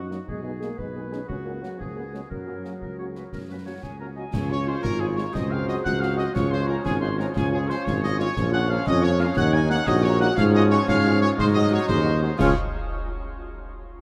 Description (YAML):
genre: military-style march for wind band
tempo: 119 BPM (dotted quarters)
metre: 6/8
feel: straight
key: F# major, Db major from 4.3 s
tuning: A4 = 440 Hz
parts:
  - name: warm euphonium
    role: second line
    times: 0.0-12.1 s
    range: E#3 to Ab4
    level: -34 LUFS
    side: equal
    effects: none
  - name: warm woodwind section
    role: second line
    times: 0.0-12.5 s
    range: Eb4 to F5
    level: -36 LUFS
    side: equal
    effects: none
  - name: mellow tuba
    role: bass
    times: 0.0-12.5 s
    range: Ab1 to Ab2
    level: -26 LUFS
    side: equal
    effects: none
  - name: mellow trumpet section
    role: melody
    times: 0.1-12.5 s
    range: F#4 to Ab5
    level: -33 LUFS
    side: equal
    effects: none
  - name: clear French horn section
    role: accompaniment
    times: 0.1-12.5 s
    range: G#3 to G#4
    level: -35 LUFS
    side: equal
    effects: none
  - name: concert snare drum, concert bass drum and clash cymbals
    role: drums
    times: 0.1-12.6 s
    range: none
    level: -34 LUFS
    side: equal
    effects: none
  - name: mellow piccolo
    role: second line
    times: 3.7-12.6 s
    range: F#5 to Ab6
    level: -35 LUFS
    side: equal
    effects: none
  - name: dark trombone section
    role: sustained chords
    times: 4.3-12.5 s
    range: Eb3 to F4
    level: -34 LUFS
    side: equal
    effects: none
room: moderate cathedral reverb, RT60 6.0 s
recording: in a vast, echoing space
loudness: -23 LUFS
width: mono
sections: 0.0-4.3 A section; 4.3-12.4 B section; 12.4-13.4 C section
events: none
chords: 0.3 G#m/B; 1.3 F#/C#; 1.8 C#5; 2.3 F#; 4.3 Db; 5.3 Ab7/Db; 6.3 Db; 8.4 Bbm; 9.4 Ebm7; 10.4 Db/Ab; 11.4 Ab7; 12.4 Db